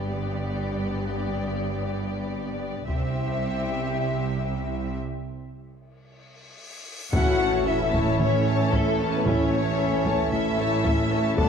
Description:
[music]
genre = cinematic, epic orchestral film score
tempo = 113 BPM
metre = 4/4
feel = straight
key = A major from 7.1 s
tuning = A4 = 440 Hz
[part]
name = warm symphonic violin section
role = melody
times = 0.0-11.5 s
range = A4 to A5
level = -30 LUFS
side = left 3 dB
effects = none
[part]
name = warm symphonic violin section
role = second line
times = 0.0-11.5 s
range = G4 to A5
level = -34 LUFS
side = left 3 dB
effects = none
[part]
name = warm symphonic viola section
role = accompaniment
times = 0.0-11.5 s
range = F#3 to E4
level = -34 LUFS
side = left 1 dB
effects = none
[part]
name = mellow French horn section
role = sustained chords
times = 0.0-11.5 s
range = G3 to A4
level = -30 LUFS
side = left 3 dB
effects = none
[part]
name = dark symphonic double bass section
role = bass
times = 0.0-11.5 s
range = G1 to D2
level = -31 LUFS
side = right 4 dB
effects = none
[part]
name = rich symphonic cello section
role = bass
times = 0.0-11.5 s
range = C2 to D3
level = -32 LUFS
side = right 2 dB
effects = none
[part]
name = taiko ensemble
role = drums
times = 2.9-3.9, 7.1-11.5 s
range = none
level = -29 LUFS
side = left 1 dB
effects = none
[part]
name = cymbal swell and sub drop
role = sound effects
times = 6.4-9.3 s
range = none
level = -36 LUFS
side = left 1 dB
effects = none
[part]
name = pipe organ, stopped flute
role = sustained chords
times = 7.1-11.5 s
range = A3 to F#5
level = -33 LUFS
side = equal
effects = none
[part]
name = warm trombone section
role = sustained chords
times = 7.1-11.5 s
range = E3 to A3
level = -34 LUFS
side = right 3 dB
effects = none
[part]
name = dark tuba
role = bass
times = 7.1-11.5 s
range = A1 to D2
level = -31 LUFS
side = right 5 dB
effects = none
[part]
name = timpani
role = percussion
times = 7.1-7.9 s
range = A2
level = -34 LUFS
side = equal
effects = none
[sound]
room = moderate concert hall reverb, RT60 2.2 s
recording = dark, warm production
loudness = -22 LUFS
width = side -7 dB against mid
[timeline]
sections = 0.0-7.1 A section; 7.1-11.5 B section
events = break 5.0-7.1; drum fill 6.3-7.1; cymbal swell 6.4-7.1; impact 7.1-9.2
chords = 0.0 G; 2.9 C; 5.0 N.C.; 7.1 A

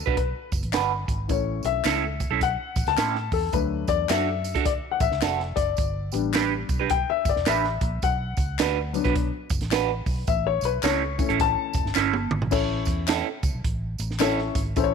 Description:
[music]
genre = uptempo 1960s-style soul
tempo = 107 BPM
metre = 4/4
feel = swing 62% on 8ths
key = unclear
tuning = A4 = 441 Hz
[part]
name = warm upright piano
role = accompaniment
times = 0.0-14.9 s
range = E3 to A5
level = -26 LUFS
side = left 13 dB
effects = none
[part]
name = electric guitar through a small old amp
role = stabs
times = 0.1-14.4 s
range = C#4 to B4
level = -27 LUFS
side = right 12 dB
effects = phaser
[part]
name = vintage muted fingered electric bass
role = bass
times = 0.1-14.9 s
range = E1 to A2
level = -30 LUFS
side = equal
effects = none
[part]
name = compact cocktail drum kit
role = drums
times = 0.1-14.9 s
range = crash cymbal, hi-hat, kick drum, snare drum, toms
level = -28 LUFS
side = right 2 dB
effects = none
[part]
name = tambourine and handclaps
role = percussion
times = 0.5-14.9 s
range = none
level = -35 LUFS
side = left 3 dB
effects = none
[sound]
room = light reverb, small room ambience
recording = 1960s-style stereo with parts hard left and right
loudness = -22 LUFS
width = side -6 dB against mid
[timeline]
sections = 0.0-12.5 A section; 12.5-14.9 B section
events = upright piano solo 0.0-12.5; drum fill 12.0-12.5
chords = 0.0 Bm; 1.3 A; 3.5 D; 5.8 G; 8.0 Bm; 10.3 A

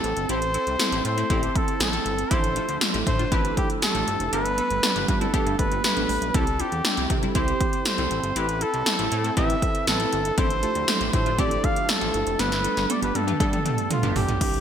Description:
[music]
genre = 1980s-style pop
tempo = 119 BPM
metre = 4/4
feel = straight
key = unclear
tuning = A4 = 438 Hz
[part]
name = clear flugelhorn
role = melody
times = 0.0-14.6 s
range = F4 to F5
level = -26 LUFS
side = left 1 dB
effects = none
[part]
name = mellow tine electric piano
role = accompaniment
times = 0.0-14.6 s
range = E3 to C5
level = -29 LUFS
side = right 5 dB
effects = ensemble chorus
[part]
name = funky polysynth comp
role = stabs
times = 0.0-14.2 s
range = G3 to B4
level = -32 LUFS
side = left 3 dB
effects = chorus, digital delay
[part]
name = chorused synth bass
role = bass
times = 0.0-14.6 s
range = F1 to C3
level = -30 LUFS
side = equal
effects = none
[part]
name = 80s electronic pad drums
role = drums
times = 0.0-14.6 s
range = crash cymbal, hi-hat, kick drum, snare drum, tambourine, toms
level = -24 LUFS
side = equal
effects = gated reverb on snare and toms, gated reverb
[sound]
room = moderate lush hall reverb, RT60 1.8 s, digital ambience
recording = bright 1980s-style digital production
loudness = -21 LUFS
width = side -8 dB against mid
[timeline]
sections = 0.0-14.4 A section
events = drum fill 12.4-14.4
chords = 0.0 Am; 2.3 Dmadd9/A; 4.3 Gadd9; 6.3 C; 8.1 Am; 10.4 Dmadd9/A; 12.4 Gadd9

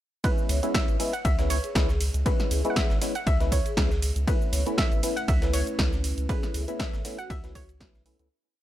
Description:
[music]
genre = deep house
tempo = 119 BPM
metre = 4/4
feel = swing 54% on 16ths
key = C# minor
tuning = A4 = 440 Hz
[part]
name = soft round pluck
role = melody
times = 0.2-8.0 s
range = B4 to F#5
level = -34 LUFS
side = equal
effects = chorus
[part]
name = percussive organ stab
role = stabs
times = 0.2-8.3 s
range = G#3 to E4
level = -32 LUFS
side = left 1 dB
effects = ensemble chorus, sidechain pumping, digital delay
[part]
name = breakbeat sampler-style drum kit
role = drums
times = 0.2-8.2 s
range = ride cymbal, snare drum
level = -41 LUFS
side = right 2 dB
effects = high-pass filter on cymbals, high-pass filter on snare
[part]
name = electronic kick drum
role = drums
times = 0.2-7.9 s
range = none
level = -26 LUFS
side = equal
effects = none
[part]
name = punchy analog drum machine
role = drums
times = 0.2-8.3 s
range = cabasa, hi-hat, snare drum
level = -32 LUFS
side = equal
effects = none
[part]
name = vibraphone with soft mallets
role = melody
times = 0.5-7.9 s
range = F#4 to C#5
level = -39 LUFS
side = left 1 dB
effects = ping-pong delay
[part]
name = round analog bass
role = bass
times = 0.5-8.3 s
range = G#1 to C#2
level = -27 LUFS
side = equal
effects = sidechain pumping
[part]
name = dark analog pad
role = sustained chords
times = 4.3-8.3 s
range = A3 to B4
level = -38 LUFS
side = equal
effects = wide subtle chorus, sidechain pumping
[sound]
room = little or no reverb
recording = none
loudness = -23 LUFS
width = side -13 dB against mid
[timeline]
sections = 0.2-8.3 drop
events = drop 0.2-8.3; fade-out 5.6-8.3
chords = 0.2 C#m7; 4.3 Aadd9

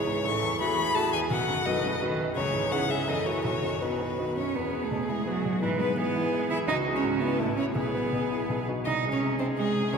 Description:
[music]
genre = quick classical-period movement for piano quartet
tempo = 168 BPM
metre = 3/4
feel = rubato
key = E major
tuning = A4 = 439 Hz
[part]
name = rich violin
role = melody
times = 0.0-10.0 s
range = E4 to C#6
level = -31 LUFS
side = left 5 dB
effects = none
[part]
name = rich cello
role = second line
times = 0.0-10.0 s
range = C#3 to E4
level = -30 LUFS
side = right 3 dB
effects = none
[part]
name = bright baby grand piano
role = accompaniment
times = 0.0-10.0 s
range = A1 to G#4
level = -30 LUFS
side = equal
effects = none
[part]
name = rich viola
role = accompaniment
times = 0.0-10.0 s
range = E4 to B4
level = -33 LUFS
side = right 2 dB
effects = none
[sound]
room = wet church reverb, RT60 2.5 s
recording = minimal, uncompressed stereo recording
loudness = -25 LUFS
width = side -6 dB against mid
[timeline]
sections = 0.0-4.6 A section; 4.6-10.0 B section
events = none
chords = 0.3 F#m7/A; 1.3 B7; 2.4 C#m; 3.1 F#m7; 3.4 B; 4.6 E; 5.6 E/G#; 6.7 C#m; 7.4 F#m7/A; 7.8 E/B; 8.5 B; 8.9 G#/B#

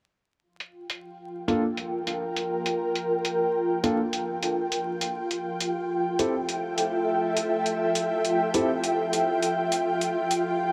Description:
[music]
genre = glitch hop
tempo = 102 BPM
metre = 4/4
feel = swing 59% on 16ths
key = G dorian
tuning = A4 = 440 Hz
[part]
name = ethereal airy pad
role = texture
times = 1.3-10.7 s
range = F4 to G5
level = -28 LUFS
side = equal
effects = ensemble chorus, built-in reverb, tremolo
[part]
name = electronic hi-hat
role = drums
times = 0.6-10.4 s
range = none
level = -33 LUFS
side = equal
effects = low-pass filter on hats
[part]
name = dark grand piano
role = stabs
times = 1.5-8.7 s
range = Bb3 to A4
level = -32 LUFS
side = equal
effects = low-pass filter, analog delay
[sound]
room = wet huge ambient reverb, RT60 4.0 s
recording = dreamy mix soaked in reverb, vinyl crackle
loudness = -27 LUFS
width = mono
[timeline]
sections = 0.4-10.7 A section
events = none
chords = 0.4 Gm7; 5.1 Fmaj9; 9.8 Gm7

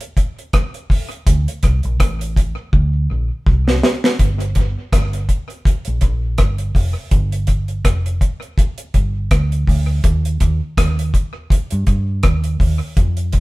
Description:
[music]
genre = roots reggae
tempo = 82 BPM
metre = 4/4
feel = swing 56% on 16ths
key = G minor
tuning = A4 = 439 Hz
[part]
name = deep reggae drum kit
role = drums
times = 0.0-13.4 s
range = hi-hat, kick drum, rim click, snare drum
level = -16 LUFS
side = equal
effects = none
[part]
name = vintage muted fingered electric bass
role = bass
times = 1.3-13.4 s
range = F1 to G2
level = -18 LUFS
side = equal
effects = none
[sound]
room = light reverb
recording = band playing live in one room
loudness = -15 LUFS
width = side -20 dB against mid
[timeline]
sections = 0.0-4.2 A section; 4.2-13.4 B section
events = drum fill 2.7-4.2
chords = none

